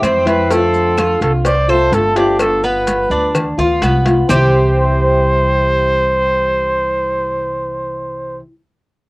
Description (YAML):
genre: latin, Cuban son and guajira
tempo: 126 BPM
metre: 4/4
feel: straight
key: C major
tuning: A4 = 440 Hz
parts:
  - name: breathy trumpet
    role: melody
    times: 0.0-8.4 s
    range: G4 to D5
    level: -15 LUFS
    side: right 1 dB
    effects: cassette tape
  - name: nylon-string guitar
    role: accompaniment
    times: 0.0-8.5 s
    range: C3 to F4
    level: -21 LUFS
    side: left 2 dB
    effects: cassette tape
  - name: Cuban tres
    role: arpeggios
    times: 0.0-8.4 s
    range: B3 to C5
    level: -19 LUFS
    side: right 1 dB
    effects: cassette tape
  - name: upright bass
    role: bass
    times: 0.0-8.4 s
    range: G1 to F2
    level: -19 LUFS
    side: equal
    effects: none
  - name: claves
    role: percussion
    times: 0.0-4.4 s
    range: none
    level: -26 LUFS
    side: left 1 dB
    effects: none
  - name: congas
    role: percussion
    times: 0.0-4.4 s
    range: none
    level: -23 LUFS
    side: equal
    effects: none
  - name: cowbell and bongos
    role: percussion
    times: 0.0-4.4 s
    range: none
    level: -22 LUFS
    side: left 2 dB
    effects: none
  - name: maracas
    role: percussion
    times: 0.0-4.4 s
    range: none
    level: -34 LUFS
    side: right 2 dB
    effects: none
room: light reverb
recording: home recording on cassette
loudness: -12 LUFS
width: side -23 dB against mid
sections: 0.0-4.3 A section; 4.3-8.1 B section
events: none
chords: 0.0 Am7 (rootless); 0.5 F6; 2.4 G7; 4.3 C